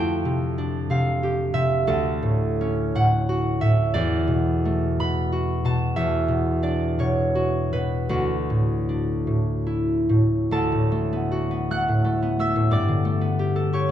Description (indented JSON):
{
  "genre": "classical, solo harp piece",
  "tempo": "45-64 BPM (dotted quarters)",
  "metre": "6/8",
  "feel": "rubato",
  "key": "D major",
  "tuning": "A4 = 442 Hz",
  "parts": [
    { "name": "concert harp", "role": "solo", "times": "0.0-13.9 s", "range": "D2 to F#6", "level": "-20 LUFS", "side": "equal", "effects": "none" }
  ],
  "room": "wet recital hall reverb, RT60 1.5 s",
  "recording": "dark, warm production",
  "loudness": "-20 LUFS",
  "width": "side -10 dB against mid",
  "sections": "0.0-10.5 A section; 10.5-13.9 A section",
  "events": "none",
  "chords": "0.0 F69; 1.9 Dmaj7; 3.9 E9sus4; 6.0 Esus2; 8.1 Dadd9; 10.5 D6; 12.7 Gadd9"
}